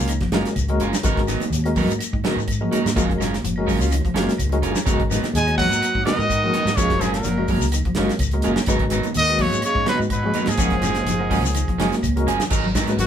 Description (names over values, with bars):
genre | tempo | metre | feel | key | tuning
afrobeat | 126 BPM | 4/4 | swing 54% on 16ths | G# dorian | A4 = 441 Hz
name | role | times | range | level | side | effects
tine electric piano | accompaniment | 0.0-13.1 s | G#3 to F#5 | -27 LUFS | left 3 dB | medium tremolo
electric guitar at the edge of break-up | arpeggios | 0.0-13.1 s | C#3 to G#3 | -29 LUFS | left 2 dB | none
electric guitar at the edge of break-up | stabs | 0.0-12.9 s | E#3 to A#4 | -26 LUFS | right 5 dB | none
fingered electric bass | bass | 0.0-13.1 s | F#1 to G#2 | -24 LUFS | equal | none
shekere | percussion | 0.0-13.1 s | none | -31 LUFS | left 8 dB | none
damped 70s drum kit | drums | 0.1-13.1 s | crash cymbal, hi-hat, kick drum, snare drum | -25 LUFS | equal | none
claves | percussion | 0.1-12.9 s | none | -42 LUFS | right 1 dB | none
congas | percussion | 0.3-13.1 s | none | -29 LUFS | right 2 dB | none
warm trombone section | second line | 5.3-13.1 s | F#2 to G#3 | -30 LUFS | right 1 dB | none
clear trumpet | melody | 5.4-13.1 s | F#4 to G#5 | -22 LUFS | equal | none
raspy tenor saxophone | second line | 5.4-13.1 s | B2 to D#4 | -34 LUFS | right 1 dB | none
room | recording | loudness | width
wet small room reverb, RT60 0.5 s | band playing live in one room | -18 LUFS | side -9 dB against mid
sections
0.0-12.5 A section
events
drum fill 3.9-4.9, 11.8-12.5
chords
0.0 F#maj9; 1.0 G#m9; 3.0 F#maj9; 4.9 G#m9; 6.8 F#maj9; 8.7 G#m9; 10.6 F#maj9; 12.5 G#m9